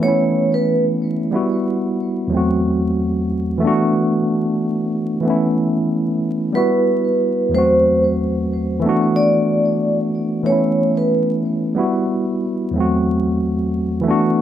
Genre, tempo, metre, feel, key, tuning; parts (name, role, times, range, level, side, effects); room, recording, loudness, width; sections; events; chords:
hip hop; 92 BPM; 4/4; swing 56% on 16ths; A4 = 438 Hz
vibraphone with soft mallets; melody; 0.0-0.8, 6.6-11.3 s; B4 to D5; -18 LUFS; right 1 dB; ping-pong delay
tine electric piano; accompaniment; 0.0-14.4 s; E2 to F#4; -17 LUFS; equal; medium stereo tremolo, cassette tape
wet small room reverb, RT60 0.5 s; vinyl crackle; -16 LUFS; side -10 dB against mid
0.0-14.4 A section
0.0 Aadd9/E; 1.3 Emadd9; 2.3 F#dim/E; 3.6 Bm7/E; 5.2 Aadd9/E; 6.6 Emadd9; 7.5 F#dim/E; 8.8 Bm7/E; 10.5 Aadd9/E; 11.8 Emadd9; 12.8 F#dim/E